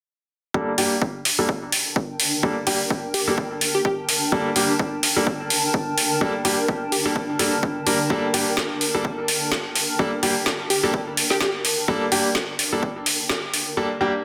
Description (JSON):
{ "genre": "bass house", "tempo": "127 BPM", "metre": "4/4", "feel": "swing 57% on 16ths", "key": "G minor", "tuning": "A4 = 440 Hz", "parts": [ { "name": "bright grand piano", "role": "stabs", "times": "0.5-14.1 s", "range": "G3 to Bb4", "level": "-26 LUFS", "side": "equal", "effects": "sidechain pumping, low-pass filter, tape echo" }, { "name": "electronic kick drum", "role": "drums", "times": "0.5-13.4 s", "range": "none", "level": "-29 LUFS", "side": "equal", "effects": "high-pass filter on kick, small room ambience" }, { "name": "granular cloud pad", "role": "texture", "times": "1.7-13.8 s", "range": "D4 to A5", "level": "-31 LUFS", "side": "equal", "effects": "built-in reverb, sidechain pumping" }, { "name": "garage drum kit", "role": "drums", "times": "0.8-13.6 s", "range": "hi-hat, snare drum", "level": "-24 LUFS", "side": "equal", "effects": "overdrive, small room ambience" }, { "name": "plucky unison lead", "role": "melody", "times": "3.1-3.9, 6.9-7.1, 10.7-11.5 s", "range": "G4", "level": "-28 LUFS", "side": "equal", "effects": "tape echo" } ], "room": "moderate digital room reverb, RT60 1.1 s", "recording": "dense, heavily limited modern master", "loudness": "-22 LUFS", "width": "mono", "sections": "0.5-14.2 A section", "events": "filter sweep on grand piano 0.5-14.2", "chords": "0.5 Gmadd9" }